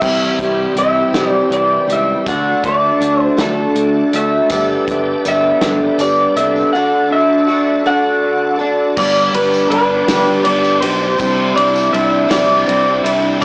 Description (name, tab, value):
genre	folk rock and heartland rock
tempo	54 BPM (dotted quarters)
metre	6/8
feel	straight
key	G major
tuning	A4 = 435 Hz
part	electric guitar through a small old amp	melody	0.0-13.4 s	A4 to F#5	-18 LUFS	equal	analog chorus, plate reverb
part	picked twelve-string acoustic guitar	accompaniment	0.0-13.4 s	G2 to A4	-21 LUFS	equal	plate reverb
part	bright tonewheel organ	sustained chords	0.0-13.4 s	G3 to D5	-30 LUFS	equal	slow rotary speaker, overdrive, chorus vibrato, plate reverb
part	electric guitar through a small old amp	riff	0.0-13.4 s	G2 to G4	-22 LUFS	equal	analog chorus
part	modern bright fingered electric bass	bass	0.0-13.4 s	G1 to D2	-28 LUFS	equal	none
part	natural country drum kit	drums	0.0-13.4 s	crash cymbal, hi-hat, kick drum, ride cymbal, snare drum	-24 LUFS	equal	none
part	tambourine	percussion	4.5-13.4 s	none	-35 LUFS	equal	none
room	moderate studio reverb, RT60 0.8 s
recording	blown-out, overdriven recording, overdrive, small speaker sound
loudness	-14 LUFS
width	mono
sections	0.0-9.0 A section; 9.0-13.4 B section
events	none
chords	0.0 C; 2.3 D; 4.5 Gadd9; 6.7 D; 9.0 G; 11.2 Cadd9